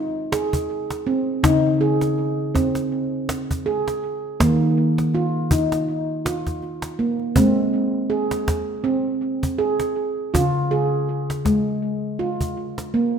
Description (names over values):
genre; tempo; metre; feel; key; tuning
world meditative, meditative tuned percussion; 81 BPM; 4/4; swing 56% on 16ths; Ab major; A4 = 445 Hz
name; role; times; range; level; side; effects
handpan; arpeggios; 0.0-13.2 s; Db3 to Ab4; -20 LUFS; right 1 dB; tape echo
cajon; percussion; 0.3-12.9 s; none; -24 LUFS; equal; none
room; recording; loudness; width
wet recital hall reverb, RT60 1.4 s, small room ambience; none; -19 LUFS; side -7 dB against mid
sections
0.0-7.4 A section; 7.4-13.2 B section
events
none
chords
0.0 Ab; 1.4 Db5; 4.4 Eb5; 7.4 Ab; 10.3 Db